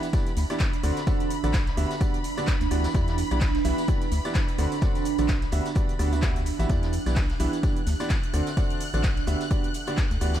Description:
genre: piano house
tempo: 128 BPM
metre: 4/4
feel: swing 57% on 16ths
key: E minor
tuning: A4 = 440 Hz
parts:
  - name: bright studio violin section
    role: sustained chords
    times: 0.0-10.4 s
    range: B5 to F#6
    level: -37 LUFS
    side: left 3 dB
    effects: sidechain pumping
  - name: clear grand piano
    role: riff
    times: 0.0-10.4 s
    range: D3 to E5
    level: -30 LUFS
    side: right 2 dB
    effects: sidechain pumping, dub echo
  - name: house drum kit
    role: drums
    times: 0.0-10.4 s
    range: handclaps, hi-hat, shaker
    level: -36 LUFS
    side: equal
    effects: small room ambience
  - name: tambourine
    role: percussion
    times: 0.0-10.4 s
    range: none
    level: -48 LUFS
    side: right 4 dB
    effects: none
  - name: ethereal airy pad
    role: texture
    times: 0.1-10.4 s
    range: D4 to B5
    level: -33 LUFS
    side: right 7 dB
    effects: ensemble chorus, built-in reverb, phaser, sidechain pumping
  - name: electronic kick drum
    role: drums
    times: 0.1-10.1 s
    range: none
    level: -26 LUFS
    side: equal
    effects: small room ambience
  - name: jazz brush drum kit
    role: drums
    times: 0.1-10.4 s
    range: hi-hat, snare drum, tambourine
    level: -44 LUFS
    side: equal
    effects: none
  - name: organ-like FM bass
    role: bass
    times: 0.4-10.4 s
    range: A1 to E2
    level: -26 LUFS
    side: equal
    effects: sidechain pumping
room: small room ambience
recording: dark, warm production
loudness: -23 LUFS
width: side -11 dB against mid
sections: 0.0-10.4 A section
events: none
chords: 0.0 Em7; 0.8 D7; 1.8 Gmaj7/D; 2.9 Em7; 4.6 D7; 5.5 Gmaj7/D; 6.7 Em7; 8.3 D7; 9.3 Gmaj7/D

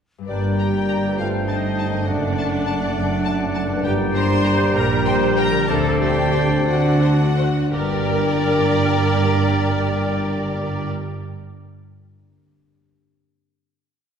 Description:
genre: cinematic, playful, whimsical film cue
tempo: 55-68 BPM (dotted quarters)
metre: 6/8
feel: straight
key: G minor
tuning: A4 = 440 Hz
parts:
  - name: concert harp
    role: arpeggios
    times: 0.2-11.6 s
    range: F#2 to D5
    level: -26 LUFS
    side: left 2 dB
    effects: none
  - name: clear clarinet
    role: second line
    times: 0.3-10.9 s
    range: Bb4 to D5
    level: -30 LUFS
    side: left 2 dB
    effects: none
  - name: clear oboe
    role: second line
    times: 0.3-10.9 s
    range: D5 to G5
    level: -30 LUFS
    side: equal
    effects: none
  - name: mellow hollow concert flute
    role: second line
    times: 0.3-10.9 s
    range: G5 to Bb5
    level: -31 LUFS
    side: left 2 dB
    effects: none
  - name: rich studio violin section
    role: second line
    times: 0.3-10.9 s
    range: G4 to C6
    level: -30 LUFS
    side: left 3 dB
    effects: none
  - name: mellow bassoon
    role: accompaniment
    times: 0.3-10.9 s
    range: G3 to Bb3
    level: -28 LUFS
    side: right 2 dB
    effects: none
  - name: rich studio viola section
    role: accompaniment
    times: 0.3-10.9 s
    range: D4 to C5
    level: -26 LUFS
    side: left 1 dB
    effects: none
  - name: warm French horn section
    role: sustained chords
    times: 0.3-10.9 s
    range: G3 to D4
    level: -27 LUFS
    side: left 1 dB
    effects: none
  - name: rich studio cello section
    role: bass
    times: 0.3-10.9 s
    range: F#2 to D3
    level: -24 LUFS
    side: right 2 dB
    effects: none
  - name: rich studio double bass section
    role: bass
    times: 0.3-10.9 s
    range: F#1 to D2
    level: -25 LUFS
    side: right 3 dB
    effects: none
  - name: rich studio violin section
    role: melody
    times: 0.6-10.9 s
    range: C5 to Bb5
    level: -30 LUFS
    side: left 3 dB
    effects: none
room: wet scoring stage reverb, RT60 1.8 s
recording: heard from further back in the room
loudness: -17 LUFS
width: side -7 dB against mid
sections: 0.3-7.7 A section; 7.7-12.0 final chord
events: slowing down 3.0-7.7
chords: 0.3 Gm; 1.2 Am7b5/G; 2.1 D/F#; 3.9 Gm; 4.8 Gm/Bb; 5.7 D7sus4; 6.7 D7; 7.7 Gm

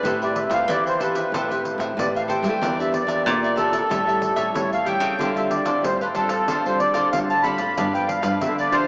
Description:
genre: samba and choro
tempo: 93 BPM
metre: 4/4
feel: straight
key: unclear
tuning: A4 = 440 Hz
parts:
  - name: accordion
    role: melody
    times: 0.0-8.9 s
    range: A4 to B5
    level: -24 LUFS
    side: equal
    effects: light tremolo tuning
  - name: cavaquinho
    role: accompaniment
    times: 0.0-8.9 s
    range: D4 to G5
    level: -31 LUFS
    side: equal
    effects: none
  - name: nylon-string guitar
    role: accompaniment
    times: 0.0-8.9 s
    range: G2 to B4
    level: -32 LUFS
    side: equal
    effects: none
  - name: nylon-string guitar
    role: bass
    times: 0.0-8.9 s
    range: E2 to A3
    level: -30 LUFS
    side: equal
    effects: none
  - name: pandeiro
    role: percussion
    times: 0.0-8.9 s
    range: none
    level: -33 LUFS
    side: equal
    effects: none
room: wet cathedral reverb, RT60 6.8 s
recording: in a vast, echoing space, small speaker sound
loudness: -22 LUFS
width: mono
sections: 0.0-8.9 A section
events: none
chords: 0.0 Am9; 2.6 Em7b5; 3.9 A7; 5.2 Dm7; 7.8 G7

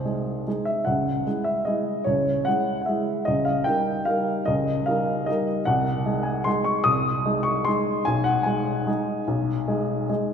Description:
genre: classical, piano waltz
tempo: 149 BPM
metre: 3/4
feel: rubato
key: unclear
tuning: A4 = 440 Hz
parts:
  - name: warm upright piano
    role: solo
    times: 0.0-10.3 s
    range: B1 to D#6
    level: -22 LUFS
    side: equal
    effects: none
room: wet church reverb, RT60 2.7 s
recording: recorded in a church or concert hall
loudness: -22 LUFS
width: side -7 dB against mid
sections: 0.0-10.3 A section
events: none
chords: 0.0 G#/B#; 0.9 C#m; 3.3 D#7/C#; 5.7 G#/B#; 8.1 G#m/B

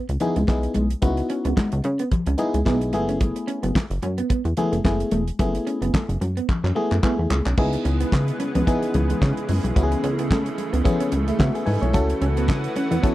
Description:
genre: early-eighties boogie funk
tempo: 110 BPM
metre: 4/4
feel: swing 56% on 16ths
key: C# minor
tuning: A4 = 442 Hz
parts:
  - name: electric guitar at the edge of break-up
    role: riff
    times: 0.0-13.1 s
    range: G#3 to C#4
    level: -27 LUFS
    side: right 3 dB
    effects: lush chorus
  - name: plucky analog bass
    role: bass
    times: 0.1-13.0 s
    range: E1 to C#3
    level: -23 LUFS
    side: equal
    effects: none
  - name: damped 70s drum kit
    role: drums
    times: 0.1-13.1 s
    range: crash cymbal, handclaps, hi-hat, kick drum, snare drum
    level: -24 LUFS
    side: equal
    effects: none
  - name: FM electric piano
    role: accompaniment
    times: 0.2-13.1 s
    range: G#3 to G#5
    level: -25 LUFS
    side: left 2 dB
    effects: chorus
  - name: congas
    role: percussion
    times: 0.2-13.1 s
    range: none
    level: -29 LUFS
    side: left 3 dB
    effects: none
  - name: lush unison pad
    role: sustained chords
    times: 7.6-13.1 s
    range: C#3 to F#4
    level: -29 LUFS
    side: right 1 dB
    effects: chorus
room: little or no reverb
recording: dry, close 1970s-style studio recording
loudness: -20 LUFS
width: side -16 dB against mid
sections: 0.0-7.6 A section; 7.6-13.1 B section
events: drum fill 6.5-7.6; FM electric piano fill 11.1-11.9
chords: 0.0 C#m9; 2.9 F#m11; 7.6 C#m7; 9.8 Amaj7/C#; 11.9 B7sus4/C#

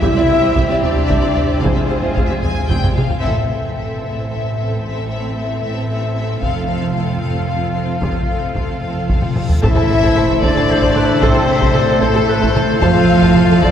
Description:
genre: cinematic, epic orchestral film score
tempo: 75 BPM (dotted quarters)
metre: 6/8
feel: straight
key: A minor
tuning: A4 = 440 Hz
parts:
  - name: warm symphonic violin section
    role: melody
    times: 0.0-13.7 s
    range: A4 to Ab5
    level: -23 LUFS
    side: left 5 dB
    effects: none
  - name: warm symphonic violin section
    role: second line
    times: 0.0-13.7 s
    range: A4 to A5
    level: -27 LUFS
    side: left 2 dB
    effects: none
  - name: warm symphonic viola section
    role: accompaniment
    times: 0.0-13.7 s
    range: C4 to A4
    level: -27 LUFS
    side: right 1 dB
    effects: none
  - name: clear trombone section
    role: sustained chords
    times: 0.0-2.9, 9.6-13.7 s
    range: A2 to A3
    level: -25 LUFS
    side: right 2 dB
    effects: none
  - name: mellow French horn section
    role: sustained chords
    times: 0.0-13.7 s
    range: E3 to F4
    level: -20 LUFS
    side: left 2 dB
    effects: none
  - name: rich symphonic string section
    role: sustained chords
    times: 0.0-13.7 s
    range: A3 to C5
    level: -27 LUFS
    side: equal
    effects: none
  - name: dark symphonic cello section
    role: bass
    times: 0.0-13.7 s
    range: C2 to F3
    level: -21 LUFS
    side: right 3 dB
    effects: none
  - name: rich symphonic double bass section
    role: bass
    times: 0.0-13.7 s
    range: F1 to F2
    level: -22 LUFS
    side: right 2 dB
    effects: none
  - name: taiko ensemble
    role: drums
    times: 0.0-13.7 s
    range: none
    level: -19 LUFS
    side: equal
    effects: none
  - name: reverse cymbal and sub drop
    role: sound effects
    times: 9.4-11.2 s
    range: none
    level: -30 LUFS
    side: equal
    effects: none
  - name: dark trumpet section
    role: stabs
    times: 9.6-13.7 s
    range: C5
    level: -23 LUFS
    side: left 1 dB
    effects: none
  - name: timpani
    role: percussion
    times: 9.6-10.4 s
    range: A2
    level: -25 LUFS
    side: equal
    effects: none
  - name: concert flute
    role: second line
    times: 10.4-13.7 s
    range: A4 to E5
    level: -23 LUFS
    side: left 1 dB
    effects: none
room: wet cathedral reverb, RT60 4.7 s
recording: recorded in a church or concert hall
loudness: -13 LUFS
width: side -9 dB against mid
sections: 0.0-3.2 A section; 3.2-9.6 B section; 9.6-13.7 C section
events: drum fill 2.8-3.2, 9.2-9.6; band accent 3.2-3.8; reverse cymbal 9.4; impact 9.6-11.2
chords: 0.0 C; 1.6 Fm; 3.2 Am; 6.4 F; 9.6 Am; 12.8 F

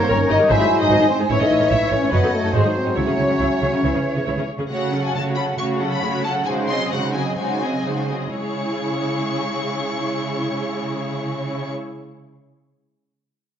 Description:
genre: classical, dramatic, fast romantic movement for symphony orchestra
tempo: 114-151 BPM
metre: 4/4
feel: rubato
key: C# minor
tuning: A4 = 440 Hz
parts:
  - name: warm studio violin section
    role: melody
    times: 0.0-11.7 s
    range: G#4 to C#6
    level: -29 LUFS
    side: left 3 dB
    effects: none
  - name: dark symphonic violin section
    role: second line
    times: 0.0-11.7 s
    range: F#4 to F#5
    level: -26 LUFS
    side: left 1 dB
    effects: none
  - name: mellow small flute group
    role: second line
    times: 0.0-4.5 s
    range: D#5 to A#5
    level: -25 LUFS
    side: right 2 dB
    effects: none
  - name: warm oboe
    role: second line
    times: 0.0-4.5 s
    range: B#4 to C#5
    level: -28 LUFS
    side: right 1 dB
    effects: none
  - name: warm bassoon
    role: accompaniment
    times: 0.0-4.5 s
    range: D#3 to F#3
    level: -27 LUFS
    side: right 1 dB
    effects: none
  - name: mellow French horn section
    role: sustained chords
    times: 0.0-4.5 s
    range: G#3 to E4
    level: -20 LUFS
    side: left 3 dB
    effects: none
  - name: warm studio cello section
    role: bass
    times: 0.0-11.7 s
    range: F#2 to C#3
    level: -26 LUFS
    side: right 2 dB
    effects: none
  - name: warm symphonic viola section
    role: accompaniment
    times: 0.1-11.7 s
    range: F#3 to C#5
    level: -26 LUFS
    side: right 1 dB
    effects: none
  - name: warm symphonic double bass section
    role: bass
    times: 0.1-4.3 s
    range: F#1 to C#2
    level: -24 LUFS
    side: right 3 dB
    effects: none
room: wet recital hall reverb, RT60 1.4 s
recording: nothing above 7.7 kHz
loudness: -18 LUFS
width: side -9 dB against mid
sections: 0.0-4.7 A section; 4.7-8.4 B section; 8.4-12.1 C section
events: slowing down 3.8-8.4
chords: 0.0 D#7/G; 0.5 G#7; 1.3 A; 2.1 D#m7b5/F#; 2.5 G#7; 3.0 C#m; 4.7 F#m/C#; 6.5 G#7/C#; 8.4 C#m

